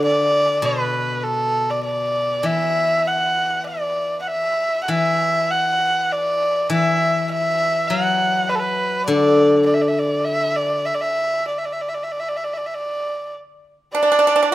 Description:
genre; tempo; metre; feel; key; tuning
chinese traditional, Chinese chamber ensemble; 99 BPM; 4/4; rubato; D gong mode; A4 = 440 Hz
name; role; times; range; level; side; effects
dark erhu; melody; 0.0-14.5 s; A4 to F#5; -19 LUFS; right 1 dB; none
steel-string zither; accompaniment; 0.0-10.9 s; B2 to F#3; -22 LUFS; left 2 dB; none
pipa; second line; 13.9-14.5 s; D4; -18 LUFS; right 6 dB; none
room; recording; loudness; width
light reverb; close, detailed microphones; -17 LUFS; side -15 dB against mid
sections
0.0-13.9 A section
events
none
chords
none

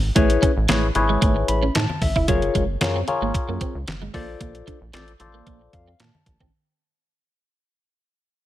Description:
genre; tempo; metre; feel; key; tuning
early-eighties boogie funk; 113 BPM; 4/4; straight; unclear; A4 = 439 Hz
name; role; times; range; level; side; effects
rubbery square bass; bass; 0.0-6.5 s; F1 to Bb2; -24 LUFS; equal; none
barky tine electric piano; accompaniment; 0.2-6.5 s; E4 to B5; -24 LUFS; left 4 dB; phaser
clean electric guitar; riff; 0.2-6.5 s; Gb3 to E4; -27 LUFS; right 6 dB; ensemble chorus
clean 12-bit digital drum machine; drums; 0.2-6.5 s; handclaps, hi-hat, kick drum, snare drum; -23 LUFS; equal; none
congas; percussion; 0.2-6.5 s; none; -33 LUFS; left 2 dB; none
room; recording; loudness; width
little or no reverb; none; -18 LUFS; side -14 dB against mid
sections
0.0-6.5 A section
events
fade-out 0.0-6.5; tine electric piano fill 1.2-2.3, 5.5-6.5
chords
0.2 Amaj9; 2.3 Gbmaj9; 4.1 Bbmaj9

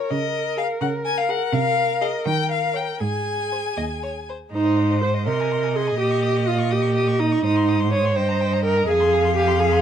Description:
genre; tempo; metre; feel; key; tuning
quick classical-period movement for string quartet; 83 BPM (dotted quarters); 6/8; rubato; Ab major; A4 = 440 Hz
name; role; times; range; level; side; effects
clear violin; melody; 0.0-9.8 s; C5 to Ab5; -25 LUFS; left 6 dB; none
rich violin; second line; 0.0-9.8 s; Ab4 to Eb6; -33 LUFS; left 4 dB; none
rich viola; accompaniment; 0.0-9.8 s; Eb4 to Db5; -22 LUFS; right 1 dB; none
bright cello; bass; 0.1-9.8 s; Eb2 to Eb3; -24 LUFS; right 3 dB; none
room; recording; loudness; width
light reverb; dark, warm production; -19 LUFS; side -9 dB against mid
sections
0.0-4.5 A section; 4.5-9.8 B section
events
none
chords
0.1 Ab5/Db; 1.5 Ab/C; 2.3 Eb5; 3.0 Ab5; 4.5 Ab; 5.3 Ab/C; 6.0 Eb7/Bb; 7.4 Ab; 8.2 Eb/G; 8.9 Fm

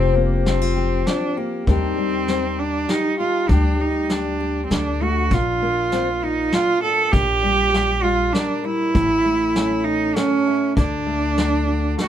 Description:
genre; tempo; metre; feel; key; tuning
acoustic folk duo or small band; 99 BPM; 3/4; straight; unclear; A4 = 441 Hz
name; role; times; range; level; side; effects
rich cello; melody; 0.0-12.1 s; Bb3 to A4; -20 LUFS; right 3 dB; none
fingerpicked steel-string acoustic guitar; accompaniment; 0.0-12.1 s; A2 to Bb4; -24 LUFS; left 5 dB; none
upright bass; bass; 0.0-11.9 s; F1 to Eb2; -23 LUFS; left 1 dB; none
vintage brush drum kit; drums; 0.5-12.1 s; hi-hat, kick drum, snare drum; -23 LUFS; equal; none
room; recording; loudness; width
moderate small room reverb, RT60 0.5 s; minimal, uncompressed stereo recording; -17 LUFS; side -10 dB against mid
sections
0.0-12.1 A section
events
none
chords
0.0 Fsus2; 1.7 Cmadd9/Eb; 3.5 Dsus4; 4.7 D; 5.3 Bb; 7.1 Bb5; 8.9 A; 10.8 D

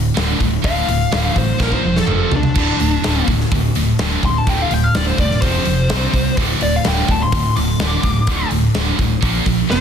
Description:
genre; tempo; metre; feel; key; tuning
hard rock; 126 BPM; 4/4; straight; D minor; A4 = 439 Hz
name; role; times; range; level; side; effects
high-gain distorted guitar; riff; 0.0-9.8 s; D2 to C4; -22 LUFS; left 8 dB; distortion
scooped high-gain guitar; riff; 0.0-9.8 s; D2 to C4; -21 LUFS; right 9 dB; distortion
vintage muted fingered electric bass; bass; 0.0-9.8 s; D1 to C#2; -20 LUFS; equal; none
big rock drum kit; drums; 0.2-9.8 s; crash cymbal, hi-hat, kick drum, snare drum, toms; -20 LUFS; equal; soft clipping on kick
smooth overdriven lead guitar; melody; 0.7-9.8 s; D4 to D6; -22 LUFS; left 2 dB; analog delay
fuzz lead guitar; second line; 9.7-9.8 s; C4; -17 LUFS; right 8 dB; distortion
room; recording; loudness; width
light reverb, small room ambience; dense, heavily limited modern master; -14 LUFS; side -8 dB against mid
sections
0.0-9.8 A section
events
lead electric guitar solo 0.0-9.8; drum fill 1.6-2.6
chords
0.0 Dm; 1.6 Bb5; 2.1 F5; 2.6 D5; 5.4 F5; 5.9 C5; 6.4 D5; 9.2 Bb5

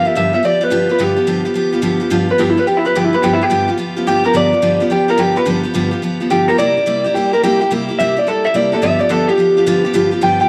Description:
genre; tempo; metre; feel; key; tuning
rock; 214 BPM; 4/4; swing 64% on 8ths; G mixolydian; A4 = 440 Hz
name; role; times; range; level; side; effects
electric guitar through a small old amp; melody; 0.0-10.5 s; E4 to G5; -17 LUFS; equal; tape echo
picked steel-string acoustic guitar; accompaniment; 0.0-10.5 s; G2 to G4; -19 LUFS; equal; none
room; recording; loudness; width
moderate echo chamber reverb, RT60 1.8 s, small room ambience; none; -15 LUFS; mono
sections
0.0-2.1 A section; 2.1-10.5 B section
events
clean electric guitar solo 2.1-10.5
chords
0.0 G7; 6.6 C7; 8.8 G7

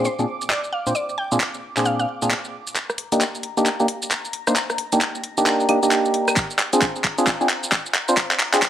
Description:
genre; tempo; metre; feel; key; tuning
UK garage, two-step garage; 133 BPM; 4/4; swing 62% on 16ths; C minor; A4 = 439 Hz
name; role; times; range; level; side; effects
airy breathy pad; sustained chords; 0.0-8.7 s; Bb5 to D6; -33 LUFS; left 3 dB; chorus, phaser, sidechain pumping
percussive organ stab; stabs; 0.0-8.6 s; Bb2 to C5; -21 LUFS; equal; chorus, digital delay
garage drum kit; drums; 0.0-8.7 s; claves, handclaps, hi-hat, rim click, shaker; -22 LUFS; equal; high-pass filter on perc, high-pass filter on snare, high-pass filter on hats
mallet-like synth pluck; melody; 0.1-2.0 s; C5 to G5; -26 LUFS; equal; chorus, digital delay
electronic kick drum; drums; 6.4-8.7 s; none; -27 LUFS; equal; none
room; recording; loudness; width
moderate plate reverb, RT60 1.3 s, digital ambience; vinyl crackle, high-pass filter; -19 LUFS; side -10 dB against mid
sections
0.0-2.8 A section; 2.8-8.7 B section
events
build-up 2.8-8.7; drum fill 2.8-8.7; filter sweep on synth stab 2.8-8.7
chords
0.0 Bb9; 2.8 Cm9 (rootless); 6.4 Bb9

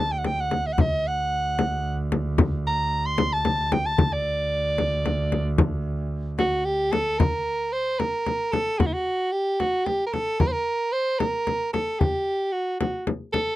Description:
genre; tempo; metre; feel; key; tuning
Persian modal ensemble; 75 BPM (dotted quarters); 6/8; straight; D dastgah homayun; A4 = 440 Hz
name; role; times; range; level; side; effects
clear soprano saxophone; melody; 0.0-13.6 s; Eb4+44c to C6; -24 LUFS; right 1 dB; none
bright double bass; drone; 0.0-7.2 s; D2; -28 LUFS; right 2 dB; none
frame drum; percussion; 0.2-13.5 s; none; -23 LUFS; left 2 dB; none
room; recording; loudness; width
light reverb; dark, warm production; -22 LUFS; side -15 dB against mid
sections
0.0-7.2 A section; 7.2-13.6 B section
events
none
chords
none

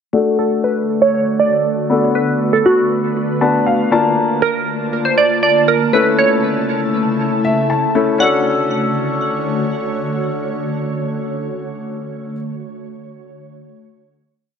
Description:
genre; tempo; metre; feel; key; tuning
dance-pop; 119 BPM; 4/4; straight; D major; A4 = 440 Hz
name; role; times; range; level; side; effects
clear grand piano; accompaniment; 0.1-12.4 s; A3 to A5; -18 LUFS; left 4 dB; low-pass filter
ethereal airy pad; sustained chords; 0.8-12.3 s; C#3 to A5; -21 LUFS; right 1 dB; ensemble chorus, built-in reverb, low-pass filter
glassy wavetable pluck; melody; 0.4-12.3 s; F#4 to F#5; -16 LUFS; right 3 dB; chorus, low-pass filter, tape echo
room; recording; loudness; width
moderate lush hall reverb, RT60 2.8 s; none; -14 LUFS; side -7 dB against mid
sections
0.1-8.2 breakdown; 8.2-12.2 final chord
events
filter sweep 0.1-8.2; grand piano fill 3.2-4.2, 7.2-8.2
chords
0.1 D; 1.9 Bm7; 3.9 Bbmaj7; 5.9 A; 8.2 Dmaj7

